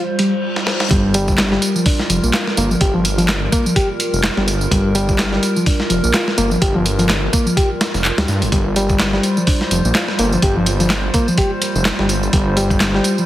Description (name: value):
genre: breakbeat, breaks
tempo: 126 BPM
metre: 4/4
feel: swing 57% on 16ths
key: G minor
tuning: A4 = 440 Hz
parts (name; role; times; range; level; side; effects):
- warbly tape-like pad; sustained chords; 0.0-13.3 s; G3 to C5; -24 LUFS; equal; chorus, built-in reverb, sidechain pumping
- bright reed electric piano; riff; 0.0-13.3 s; F3 to G4; -19 LUFS; left 1 dB; overdrive, tape echo
- reverse cymbal; sound effects; 0.2-0.9 s; none; -28 LUFS; left 4 dB; none
- dusty soul sampler-style drum kit; drums; 0.2-13.2 s; hi-hat, kick drum, snare drum; -19 LUFS; equal; high-pass filter on hats, high-pass filter on snare, high-pass filter on kick, high-pass filter on room
- detuned saw bass; bass; 0.9-13.0 s; F1 to G2; -20 LUFS; equal; none
- electronic tambourine and handclaps; drums; 0.9-13.3 s; none; -24 LUFS; right 1 dB; overdrive, low-pass filter on perc, low-pass filter on snare
room: light reverb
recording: heavily compressed radio sound, multiband compression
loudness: -14 LUFS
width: side -14 dB against mid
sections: 0.9-13.3 A section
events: reverse cymbal 0.2-0.9; drum fill 0.5-0.9; drop 0.9-13.3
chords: 0.0 G7(no3); 0.9 Gm7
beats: 0.43 | 0.91 1.38 1.86 2.33 | 2.81 3.29 3.76 4.24 | 4.71 5.19 5.67 6.14 | 6.62 7.10 7.57 8.05 | 8.52 9.00 9.48 9.95 | 10.43 10.90 11.38 11.86 | 12.33 12.81